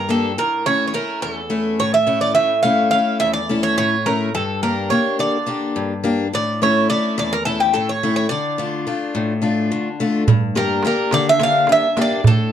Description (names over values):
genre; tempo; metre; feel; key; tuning
greek folk, Greek bouzouki band; 212 BPM (eighths); 7/8; straight; unclear; A4 = 440 Hz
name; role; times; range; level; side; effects
Greek bouzouki; melody; 0.0-12.5 s; G4 to F5; -18 LUFS; right 2 dB; none
picked steel-string acoustic guitar; accompaniment; 0.0-12.5 s; E2 to G4; -20 LUFS; left 3 dB; none
darbuka; percussion; 10.3-12.5 s; none; -16 LUFS; right 4 dB; none
room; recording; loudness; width
moderate studio ambience, RT60 0.5 s; dark, warm production; -16 LUFS; side -9 dB against mid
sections
0.0-10.3 A section; 10.3-12.5 B section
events
none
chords
0.4 A; 4.3 Gm; 6.3 A; 8.3 Dm; 10.3 Gm